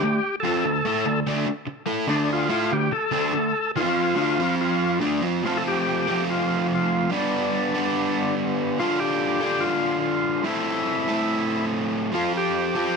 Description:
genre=rock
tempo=143 BPM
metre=4/4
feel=straight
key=D minor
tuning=A4 = 440 Hz
part: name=overdriven tonewheel organ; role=melody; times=0.0-13.0 s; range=D4 to A4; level=-25 LUFS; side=left 1 dB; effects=slow rotary speaker
part: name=crunchy overdriven guitar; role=riff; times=0.0-13.0 s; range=A2 to B4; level=-23 LUFS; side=right 1 dB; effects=none
room=light reverb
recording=none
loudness=-21 LUFS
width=side -5 dB against mid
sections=0.0-5.4 A section; 5.4-13.0 B section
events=none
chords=0.0 Dm; 3.8 F5; 4.2 Dm; 4.4 F5; 5.0 Dm; 5.4 F; 7.1 G; 8.8 Dm; 10.5 Am; 12.1 F

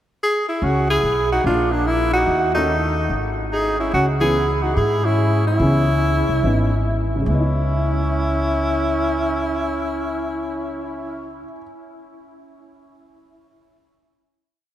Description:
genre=jazz, small-group swing and bop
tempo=144 BPM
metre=4/4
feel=swing 65% on 8ths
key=C# minor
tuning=A4 = 442 Hz
part: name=breathy tenor saxophone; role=melody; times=0.2-11.4 s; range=D4 to G#4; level=-21 LUFS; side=equal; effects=none
part: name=warm trumpet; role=second line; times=0.6-11.4 s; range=A3 to E4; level=-28 LUFS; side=right 2 dB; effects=none
part: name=upright bass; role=bass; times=0.6-11.4 s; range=G#1 to G#2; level=-21 LUFS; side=equal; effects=none
part: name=dark baby grand piano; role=accompaniment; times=1.5-11.6 s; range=C#3 to D#5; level=-27 LUFS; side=left 1 dB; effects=none
room=wet cathedral reverb, RT60 6.1 s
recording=in a vast, echoing space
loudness=-17 LUFS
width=side -12 dB against mid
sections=0.0-0.6 pickup bar; 0.6-7.3 A section; 7.3-10.6 final chord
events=none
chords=0.0 N.C.; 0.6 C#m7; 1.5 A#7; 2.3 D#m7b5; 3.1 C#sus2/G# (rootless); 3.9 C#m7

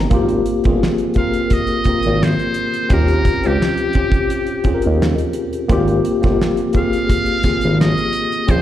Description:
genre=R&B, neo-soul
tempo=86 BPM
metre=4/4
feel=swing 53% on 16ths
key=unclear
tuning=A4 = 440 Hz
part: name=tine electric piano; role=accompaniment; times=0.0-8.6 s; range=Bb3 to Bb5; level=-18 LUFS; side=left 2 dB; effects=overdrive, fast stereo tremolo, slapback echo
part: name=smooth gliding synth bass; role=bass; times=0.0-8.6 s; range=G1 to Eb2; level=-17 LUFS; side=equal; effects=none
part: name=damped 70s drum kit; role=drums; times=0.1-8.6 s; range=handclaps, hi-hat, kick drum, snare drum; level=-18 LUFS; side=equal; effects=none
part: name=trumpet with metal mute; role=melody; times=1.2-8.6 s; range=G4 to F5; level=-22 LUFS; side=right 1 dB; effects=slapback echo
room=light reverb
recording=live gig heard through the venue's PA, recital hall reverb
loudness=-14 LUFS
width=side -12 dB against mid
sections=0.1-8.6 A section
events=none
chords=0.1 Abmaj13; 2.9 Eb13; 5.7 Abmaj13

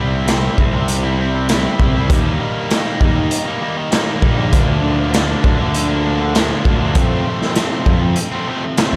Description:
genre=classic rock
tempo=99 BPM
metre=4/4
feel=straight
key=unclear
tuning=A4 = 440 Hz
part: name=distorted electric guitar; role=riff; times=0.0-9.0 s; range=F2 to E4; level=-26 LUFS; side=equal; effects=distortion, slapback echo
part: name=tight distorted guitar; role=riff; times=0.0-9.0 s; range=F2 to E4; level=-24 LUFS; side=equal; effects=distortion, slapback echo
part: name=fuzz picked electric bass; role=bass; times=0.0-9.0 s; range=Bb1 to F2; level=-21 LUFS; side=equal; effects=overdrive
part: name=raw garage drum kit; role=drums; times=0.3-8.9 s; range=hi-hat, kick drum, snare drum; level=-19 LUFS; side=equal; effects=none
room=moderate scoring stage reverb, RT60 1.9 s, studio ambience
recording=big arena sound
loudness=-16 LUFS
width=mono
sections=0.0-9.0 A section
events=none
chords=0.0 C; 2.1 Eb; 4.5 Bb/D; 7.0 F

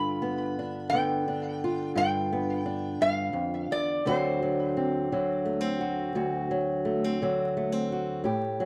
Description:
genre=acoustic country blues, solo or duo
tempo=57 BPM (dotted quarters)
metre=12/8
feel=straight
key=D mixolydian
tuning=A4 = 441 Hz
part: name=lap resonator guitar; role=melody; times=0.0-5.4 s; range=C5 to B5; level=-32 LUFS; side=equal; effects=tape echo
part: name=fingerpicked old ladder-braced acoustic guitar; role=accompaniment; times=0.0-8.7 s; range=D2 to G4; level=-30 LUFS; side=equal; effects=none
room=small room ambience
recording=dry, close 1970s-style studio recording, vinyl crackle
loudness=-29 LUFS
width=mono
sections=0.0-8.7 A section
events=none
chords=0.0 G7; 4.1 D7

